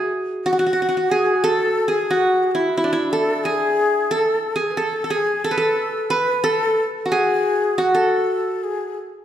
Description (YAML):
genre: Arabic maqam ensemble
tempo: 90 BPM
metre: 4/4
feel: straight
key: unclear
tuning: A4 = 440 Hz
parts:
  - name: qanun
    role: melody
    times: 0.0-9.1 s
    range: D4 to B4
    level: -19 LUFS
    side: right 1 dB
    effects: none
  - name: breathy ney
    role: second line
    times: 0.0-9.0 s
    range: E4 to B4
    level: -23 LUFS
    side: left 4 dB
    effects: none
room: wet recital hall reverb, RT60 1.4 s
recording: none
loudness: -17 LUFS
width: side -10 dB against mid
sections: 0.0-9.2 A section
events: none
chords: none